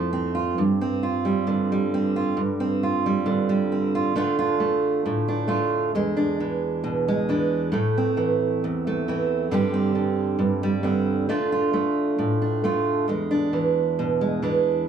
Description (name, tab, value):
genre	folk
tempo	134 BPM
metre	4/4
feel	straight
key	unclear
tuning	A4 = 440 Hz
part	fingerpicked steel-string acoustic guitar	solo	0.0-14.9 s	E2 to G4	-21 LUFS	right 2 dB	none
room	light reverb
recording	small room ambience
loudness	-21 LUFS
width	side -8 dB against mid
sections	0.0-4.1 A section; 4.1-14.9 B section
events	none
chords	0.0 Fmaj7; 0.6 G7sus4; 4.1 Dm; 5.9 E7; 7.7 Am; 9.5 Gsus4; 11.3 Dm; 13.1 E7